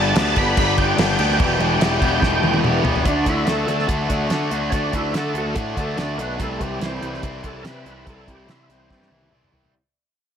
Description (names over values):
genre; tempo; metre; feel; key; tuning
classic rock; 144 BPM; 4/4; straight; unclear; A4 = 438 Hz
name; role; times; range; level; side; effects
overdriven tonewheel organ; melody; 0.0-9.1 s; E3 to B5; -25 LUFS; right 1 dB; slow rotary speaker, chorus vibrato, tape echo
distorted electric guitar; riff; 0.0-9.7 s; E2 to G4; -22 LUFS; left 1 dB; overdrive
fuzz picked electric bass; bass; 0.0-9.7 s; E1 to D3; -24 LUFS; equal; overdrive
damped 70s drum kit; drums; 0.2-9.7 s; crash cymbal, hi-hat, kick drum, snare drum, toms; -23 LUFS; equal; none
room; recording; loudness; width
light reverb, studio reverb; none; -18 LUFS; side -8 dB against mid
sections
0.0-3.1 A section; 3.1-9.7 B section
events
drum fill 2.2-3.1, 8.9-9.7; fade-out 3.1-9.7; tonewheel organ solo 3.1-9.7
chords
0.0 G; 1.4 Em; 3.1 D; 6.4 C